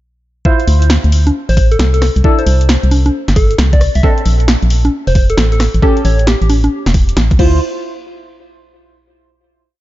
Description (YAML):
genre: UK garage, two-step garage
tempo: 134 BPM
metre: 4/4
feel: swing 64% on 16ths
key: D minor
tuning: A4 = 441 Hz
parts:
  - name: deep mellow chord stab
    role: stabs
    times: 0.5-7.6 s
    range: C4 to C5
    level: -19 LUFS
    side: right 1 dB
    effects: chorus, cassette tape, tape echo
  - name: electronic kick drum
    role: drums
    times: 0.5-7.5 s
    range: none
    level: -12 LUFS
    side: equal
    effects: overdrive
  - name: punchy analog drum machine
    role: drums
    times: 0.6-7.5 s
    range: congas, crash cymbal, hi-hat, rim click, snare drum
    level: -17 LUFS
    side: equal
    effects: overdrive
  - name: organ-like FM bass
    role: bass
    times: 0.7-7.6 s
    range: E1 to D2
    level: -11 LUFS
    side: equal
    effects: none
  - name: soft struck synth lead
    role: melody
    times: 1.5-6.5 s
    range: G4 to E5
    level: -20 LUFS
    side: left 1 dB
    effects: chorus, tape echo
room: digital ambience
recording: dark, warm production, nothing above 7.5 kHz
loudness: -9 LUFS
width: side -15 dB against mid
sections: 0.5-7.6 drop; 7.6-9.4 final hit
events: drop 0.5-7.6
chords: 0.5 Dm9; 2.0 Cadd9; 4.0 Bbmaj9; 5.6 A7; 7.4 Dm9; 7.6 N.C.